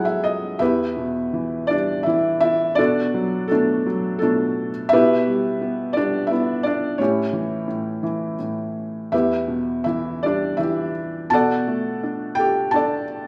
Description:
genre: classical, lyrical solo piano.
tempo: 84 BPM.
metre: 3/4.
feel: uneven beats, rubato.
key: E minor.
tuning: A4 = 440 Hz.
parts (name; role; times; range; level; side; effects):
felt-muted upright piano; solo; 0.0-13.3 s; E2 to A5; -22 LUFS; equal; none.
room: wet recital hall reverb, RT60 1.3 s.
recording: recorded in a church or concert hall.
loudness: -21 LUFS.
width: mono.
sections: 0.6-13.3 A section.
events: felt piano fill 0.0-0.6.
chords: 0.0 Eadd9; 0.6 Em; 2.8 Bm7; 4.9 G/B; 7.0 A7; 9.1 Em; 11.3 Bm7.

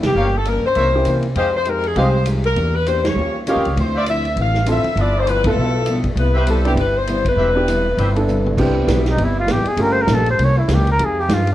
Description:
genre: jazz, big band swing.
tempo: 199 BPM.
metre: 4/4.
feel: swing 60% on 8ths.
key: C major.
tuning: A4 = 439 Hz.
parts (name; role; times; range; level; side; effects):
fingerpicked steel-string acoustic guitar; accompaniment; 0.0-11.5 s; G2 to G4; -25 LUFS; left 2 dB; none.
upright bass; bass; 0.0-11.5 s; E1 to C3; -19 LUFS; equal; none.
swinging big-band drum kit; drums; 0.0-11.5 s; crash cymbal, hi-hat, kick drum, ride cymbal, snare drum, toms; -26 LUFS; equal; none.
bright saxophone section; melody; 0.1-8.3 s; G4 to F5; -20 LUFS; left 2 dB; none.
clear trumpet section; stabs; 0.2-8.1 s; F4 to F5; -25 LUFS; right 1 dB; none.
clear grand piano; accompaniment; 0.9-10.4 s; Ab3 to A4; -22 LUFS; right 1 dB; none.
warm trumpet; melody; 9.1-11.5 s; Eb4 to Db5; -19 LUFS; equal; none.
room: light reverb.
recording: worn, warbling old tape, cassette tape, warbly pitch drift.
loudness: -15 LUFS.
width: side -13 dB against mid.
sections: 0.0-8.6 A section; 8.6-11.5 B section.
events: band accent 0.0, 3.0, 5.4, 7.2; drum fill 8.3-8.6; trumpet solo 8.6-11.5.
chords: 0.2 Gm7b5; 0.8 C7b9; 1.4 Fm9; 2.6 Em7b5; 3.2 Eb9; 3.8 Dm9; 5.0 G13; 6.2 Cmaj7; 9.8 Gm7b5; 10.4 C7b9; 11.0 Fm9.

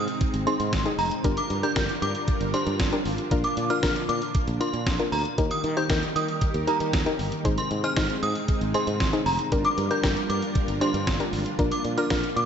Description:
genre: synth-pop.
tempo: 116 BPM.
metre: 4/4.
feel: straight.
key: unclear.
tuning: A4 = 441 Hz.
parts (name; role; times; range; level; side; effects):
synth chime; second line; 0.0-12.5 s; Bb5 to G6; -29 LUFS; right 1 dB; ensemble chorus, phaser, tape echo.
soft round pluck; accompaniment; 0.0-12.5 s; C4 to C5; -29 LUFS; left 3 dB; chorus.
string machine, cellos; sustained chords; 0.0-12.5 s; Eb3 to Bb4; -30 LUFS; right 1 dB; ensemble chorus.
sustaining fretless electric bass; bass; 0.0-12.5 s; F1 to Eb3; -30 LUFS; equal; none.
gated 80s digital drum machine; drums; 0.1-12.5 s; hi-hat, kick drum, snare drum; -28 LUFS; equal; gated reverb, gated reverb snare.
room: light reverb.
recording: nothing above 7.9 kHz.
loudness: -22 LUFS.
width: side -8 dB against mid.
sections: 0.0-12.5 A section.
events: none.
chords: 0.0 Ab; 1.2 Gm7; 3.3 Bb; 5.4 Eb; 7.5 Ab; 9.5 Gm7; 11.6 Bb.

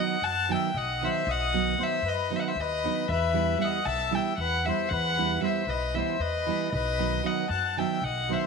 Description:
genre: balkan folk.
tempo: 231 BPM (eighths).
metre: 7/8.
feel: straight.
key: B phrygian dominant.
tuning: A4 = 440 Hz.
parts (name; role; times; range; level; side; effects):
rich violin; melody; 0.0-8.5 s; D#5 to A5; -28 LUFS; left 2 dB; none.
accordion; second line; 0.0-8.5 s; B4 to F#5; -32 LUFS; left 13 dB; none.
nylon-string guitar; accompaniment; 0.0-8.5 s; D#3 to E4; -31 LUFS; right 16 dB; none.
upright bass; bass; 0.2-8.3 s; B1 to F#2; -33 LUFS; equal; none.
room: moderate echo chamber reverb, RT60 1.9 s, studio ambience.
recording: 1960s-style stereo with parts hard left and right.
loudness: -25 LUFS.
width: side -4 dB against mid.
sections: 0.0-8.5 A section.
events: none.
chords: 0.0 B; 3.1 Em; 6.7 B.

